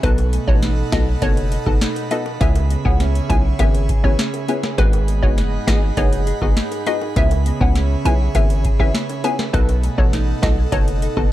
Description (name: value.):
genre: dancehall.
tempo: 101 BPM.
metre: 4/4.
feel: straight.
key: C# minor.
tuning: A4 = 438 Hz.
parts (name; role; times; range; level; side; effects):
hollow square pluck; melody; 0.0-11.1 s; B4 to G#5; -27 LUFS; left 1 dB; chorus, ping-pong delay.
wavetable chord stab; accompaniment; 0.0-11.3 s; B3 to A4; -25 LUFS; left 3 dB; none.
airy breathy pad; sustained chords; 0.0-11.3 s; G#4 to B5; -30 LUFS; right 1 dB; chorus, sidechain pumping.
mellow electric guitar; arpeggios; 0.0-11.3 s; G#2 to A4; -26 LUFS; right 5 dB; analog chorus.
hard-hitting 808-style bass; bass; 0.0-11.3 s; F#1 to C#2; -19 LUFS; equal; none.
booming analog drum machine; drums; 0.0-11.3 s; hi-hat, kick drum, rim click, snare drum; -19 LUFS; equal; none.
bongos; percussion; 0.0-10.9 s; none; -32 LUFS; left 6 dB; none.
room: little or no reverb.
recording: dark, warm production.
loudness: -15 LUFS.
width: side -14 dB against mid.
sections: 0.0-11.3 A section.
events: none.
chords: 0.0 B7; 2.4 C#m7; 4.8 G#m7; 7.2 C#m7; 9.5 B7.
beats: | 0.03 0.63 1.22 1.81 | 2.41 3.00 3.60 4.19 | 4.79 5.38 5.97 6.57 | 7.16 7.76 8.35 8.94 | 9.54 10.13 10.73 11.32.